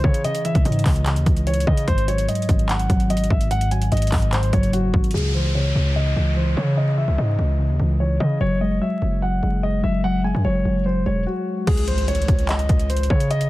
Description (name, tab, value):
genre	hip hop, trap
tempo	147 BPM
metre	4/4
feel	half-time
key	C# harmonic minor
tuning	A4 = 439 Hz
part	dark grand piano	melody	0.0-13.5 s	F#4 to G#5	-26 LUFS	left 1 dB	low-pass filter, tape echo
part	muted felt-like synth keys	accompaniment	0.0-11.7 s	G#2 to G#3	-23 LUFS	equal	chorus, low-pass filter
part	distorted 808-style bass	bass	0.0-13.5 s	E1 to C#3	-21 LUFS	equal	distortion
part	trap drum kit	drums	0.0-5.2, 11.7-13.5 s	crash cymbal, handclaps, hi-hat, kick drum	-21 LUFS	equal	none
part	downlifter and impact	sound effects	5.1-8.4, 11.7-13.3 s	none	-31 LUFS	equal	none
room	little or no reverb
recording	dense, heavily limited modern master, vinyl crackle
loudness	-18 LUFS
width	side -17 dB against mid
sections	0.0-5.1 A section; 5.1-11.7 B section; 11.7-13.5 A section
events	filter sweep 5.1-11.7; stop 11.3-11.7; impact 11.7-13.3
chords	0.0 C#madd9; 1.9 G#5; 5.1 C#madd9; 8.4 F#sus2; 11.7 C#sus2